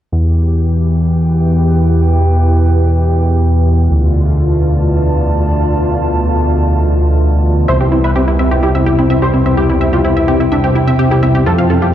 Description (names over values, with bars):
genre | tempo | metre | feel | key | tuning
techno | 127 BPM | 4/4 | straight | E phrygian | A4 = 440 Hz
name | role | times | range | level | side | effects
warm analog pad | sustained chords | 0.1-11.9 s | D3 to G4 | -19 LUFS | left 2 dB | lush chorus
fat analog bass | bass | 0.1-11.9 s | C2 to F2 | -12 LUFS | equal | tube saturation
analog drone | drone | 0.1-11.9 s | E2 to B2 | -21 LUFS | equal | chorus
warbly tape-like pad | texture | 0.6-11.9 s | E4 to A5 | -21 LUFS | equal | chorus, built-in reverb
wide unison lead | melody | 7.7-11.9 s | C4 to C5 | -16 LUFS | equal | ping-pong delay
wide unison pluck | arpeggios | 7.7-11.9 s | E4 to F5 | -18 LUFS | equal | ping-pong delay
room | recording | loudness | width
light reverb | played on a big sound system in a bare room, stone room reverb | -10 LUFS | side -11 dB against mid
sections
0.1-11.9 A section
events
none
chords
0.1 Em; 3.9 Dm; 7.7 C